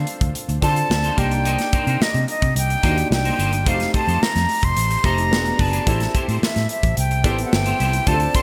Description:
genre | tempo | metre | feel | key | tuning
polished 1980s jazz-funk pop | 109 BPM | 4/4 | straight | unclear | A4 = 440 Hz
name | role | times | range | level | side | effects
breathy concert flute | melody | 0.0-8.4 s | Eb5 to C6 | -25 LUFS | equal | none
warm concert grand piano | accompaniment | 0.0-8.4 s | A3 to A4 | -29 LUFS | equal | analog chorus
vintage muted fingered electric bass | bass | 0.0-8.3 s | E1 to D3 | -24 LUFS | equal | none
modern studio drum kit | drums | 0.1-8.4 s | hi-hat, kick drum, snare drum | -24 LUFS | equal | gated reverb
electric guitar at the edge of break-up | riff | 0.2-8.4 s | D4 to C5 | -32 LUFS | equal | ensemble chorus
room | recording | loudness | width
moderate plate reverb, RT60 2.8 s | bright 1980s-style digital production | -19 LUFS | mono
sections
0.0-8.4 A section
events
none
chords
0.0 Dm7; 1.2 Cm7; 3.7 F7; 5.3 E7; 5.9 Am7

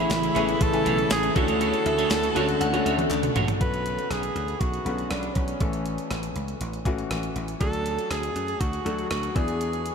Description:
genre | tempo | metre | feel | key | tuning
1980s-style pop | 120 BPM | 4/4 | straight | unclear | A4 = 440 Hz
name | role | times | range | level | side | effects
bright alto saxophone | melody | 0.0-9.9 s | C#4 to B4 | -28 LUFS | right 3 dB | diffuse ambient delay
clear concert grand piano | accompaniment | 0.0-9.9 s | D3 to G#5 | -30 LUFS | left 4 dB | none
lush unison pad | sustained chords | 0.0-3.6 s | C#3 to F#4 | -31 LUFS | left 1 dB | chorus
electric guitar at the edge of break-up | riff | 0.0-3.5 s | A3 to C#5 | -33 LUFS | right 4 dB | ensemble chorus, diffuse ambient delay
dry thumbed slap bass | bass | 0.0-9.9 s | A1 to F#2 | -31 LUFS | equal | none
clean 12-bit digital drum machine | drums | 0.1-9.9 s | hi-hat, kick drum, rim click, snare drum, tambourine, toms | -29 LUFS | equal | none
group handclap | percussion | 0.1-3.2 s | none | barely audible | none | none
glassy synth bell | second line | 1.9-3.6 s | D5 to F#5 | -36 LUFS | left 2 dB | chorus, phaser, diffuse ambient delay
room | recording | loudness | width
wet huge ambient reverb, RT60 8.7 s | dreamy mix soaked in reverb | -23 LUFS | side -6 dB against mid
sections
0.0-3.6 A section; 3.6-9.9 B section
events
drum fill 2.6-3.6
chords
0.0 Amaj7; 1.4 Dmaj7; 3.6 Bmadd9; 5.6 A; 7.6 D; 9.4 E7

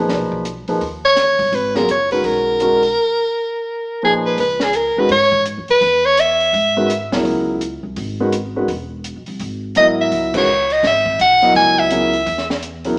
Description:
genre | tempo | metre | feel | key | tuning
modal jazz | 168 BPM | 4/4 | swing 63% on 8ths | C# dorian from 4.4 s | A4 = 439 Hz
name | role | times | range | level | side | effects
dark upright piano | accompaniment | 0.0-13.0 s | Bb2 to E5 | -19 LUFS | equal | none
upright bass | bass | 0.0-12.9 s | E1 to G#2 | -28 LUFS | equal | none
compact cocktail drum kit | drums | 0.1-12.9 s | crash cymbal, hi-hat, kick drum, snare drum | -27 LUFS | equal | none
clear soprano saxophone | melody | 1.1-7.1, 9.8-12.5 s | G#4 to G#5 | -14 LUFS | equal | none
room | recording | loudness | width
wet stone room reverb, RT60 1.1 s | band playing live in one room, small speaker sound | -13 LUFS | side -31 dB against mid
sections
0.0-4.4 A section; 4.4-13.0 B section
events
break 3.0-4.4; band accent 10.3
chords
0.0 Abm11; 4.4 C#m9

